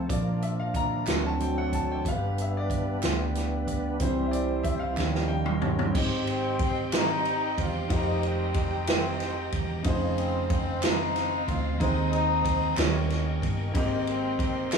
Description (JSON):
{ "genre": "slow gospel", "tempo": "62 BPM (dotted quarters)", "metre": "6/8", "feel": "straight", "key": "Ab major from 6.0 s", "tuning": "A4 = 440 Hz", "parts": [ { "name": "clear baby grand piano", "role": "accompaniment", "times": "0.0-14.8 s", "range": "Ab2 to Bb5", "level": "-32 LUFS", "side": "left 1 dB", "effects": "none" }, { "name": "bright tonewheel organ", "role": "sustained chords", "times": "0.0-14.8 s", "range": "F3 to Eb6", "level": "-34 LUFS", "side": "right 3 dB", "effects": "fast rotary speaker, chorus vibrato" }, { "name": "clear French horn section", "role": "sustained chords", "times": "0.0-6.0 s", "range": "F3 to G4", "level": "-38 LUFS", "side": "left 1 dB", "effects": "none" }, { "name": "hollow-body short-scale fingered electric bass", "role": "bass", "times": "0.0-14.8 s", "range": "Fb1 to Eb2", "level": "-31 LUFS", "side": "right 1 dB", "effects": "none" }, { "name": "swinging big-band drum kit", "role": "drums", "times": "0.1-14.8 s", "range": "crash cymbal, hi-hat, kick drum, ride cymbal, snare drum, toms", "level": "-29 LUFS", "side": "right 1 dB", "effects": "none" }, { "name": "group handclap", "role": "percussion", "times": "1.1-14.8 s", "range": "none", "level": "-39 LUFS", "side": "right 4 dB", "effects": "none" }, { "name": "warm horn section", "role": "melody", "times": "6.3-14.8 s", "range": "Eb3 to F4", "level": "-30 LUFS", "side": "left 3 dB", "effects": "none" } ], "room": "wet large studio reverb, RT60 0.7 s", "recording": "band playing live in one room, small room ambience", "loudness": "-24 LUFS", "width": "side -6 dB against mid", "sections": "0.0-6.0 A section; 6.0-14.8 B section", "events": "grand piano solo 0.0-6.0; drum fill 5.0-6.0", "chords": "0.1 Bb; 1.1 D7; 2.0 G; 4.0 C; 5.0 Eb7; 6.0 Abmaj7; 7.9 Fm11; 9.9 Dbmaj9/F; 11.8 Ab/Eb; 12.8 Eb7; 13.8 Abmaj9" }